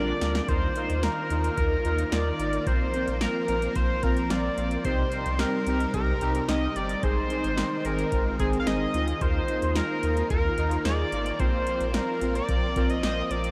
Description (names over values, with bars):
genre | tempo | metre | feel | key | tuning
synth-pop | 110 BPM | 4/4 | straight | Eb major | A4 = 438 Hz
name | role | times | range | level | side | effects
octave-doubled lead | melody | 0.0-13.5 s | Ab4 to F5 | -31 LUFS | equal | chorus, tape echo
analog synth brass | accompaniment | 0.0-13.5 s | C4 to C5 | -34 LUFS | equal | chorus
string machine, violins | sustained chords | 0.0-13.5 s | C3 to F4 | -36 LUFS | equal | ensemble chorus
round analog bass | bass | 0.0-13.5 s | G1 to Eb2 | -32 LUFS | equal | none
electro analog drum machine | drums | 0.2-13.5 s | hi-hat, kick drum, snare drum | -33 LUFS | equal | overdrive
room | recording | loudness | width
wet huge ambient reverb, RT60 8.6 s | dreamy mix soaked in reverb | -26 LUFS | mono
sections
0.5-13.5 A section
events
drum fill 0.0-0.5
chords
0.5 Ebsus2; 2.7 Bbsus2; 4.8 Cm; 7.0 Ab; 9.2 Ebsus2; 11.4 Bbsus2